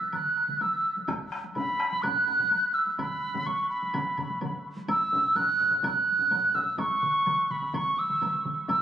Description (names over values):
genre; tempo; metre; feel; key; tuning
japanese traditional, taiko drum ensemble; 126 BPM; 4/4; straight; unclear; A4 = 439 Hz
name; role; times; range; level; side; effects
mellow hollow piccolo; melody; 0.0-8.8 s; B5 to F#6; -25 LUFS; right 1 dB; none
taiko ensemble; percussion; 0.0-8.8 s; none; -41 LUFS; equal; none
taiko ensemble; percussion; 0.1-8.6 s; none; -39 LUFS; right 2 dB; none
woodblock; percussion; 0.1-8.8 s; none; -41 LUFS; right 1 dB; none
taiko ensemble; percussion; 1.1-6.7 s; none; -38 LUFS; left 3 dB; none
taiko ensemble; percussion; 1.1-8.8 s; none; -38 LUFS; left 2 dB; none
room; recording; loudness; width
moderate huge ambient reverb, RT60 4.3 s; recorded on a phone in the room, club reverb, compression; -24 LUFS; side -10 dB against mid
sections
0.0-4.9 A section; 4.9-8.8 B section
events
none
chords
none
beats
0.13 0.60 | 1.08 1.56 2.03 2.51 | 2.98 3.46 3.93 4.41 | 4.88 5.36 5.84 6.31 | 6.79 7.26 7.74 8.21 | 8.69